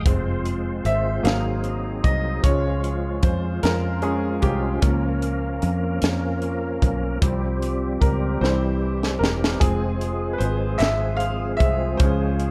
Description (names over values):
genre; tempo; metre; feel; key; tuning
slow gospel; 50 BPM (dotted quarters); 6/8; straight; F harmonic minor; A4 = 440 Hz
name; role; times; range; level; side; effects
bright grand piano; accompaniment; 0.0-12.5 s; E3 to F5; -29 LUFS; equal; none
bright tonewheel organ; sustained chords; 0.0-12.5 s; E3 to C5; -32 LUFS; equal; fast rotary speaker, chorus vibrato
fingered electric bass; bass; 0.0-12.5 s; E1 to F2; -27 LUFS; equal; none
mellow French horn section; sustained chords; 0.1-12.5 s; Ab3 to F5; -36 LUFS; equal; none
crisp fusion drum kit; drums; 0.1-12.5 s; hi-hat, kick drum, snare drum; -24 LUFS; equal; none
group handclap; percussion; 10.8-11.2 s; none; -36 LUFS; equal; none
room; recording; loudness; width
little or no reverb; none; -22 LUFS; mono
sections
0.1-12.5 A section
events
grand piano solo 0.1-12.5; drum fill 8.4-9.6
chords
0.1 Fm; 1.3 Ab7; 2.4 Db; 4.8 Bbm/Db; 7.2 Csus4; 8.4 C; 9.6 Fm; 12.0 Db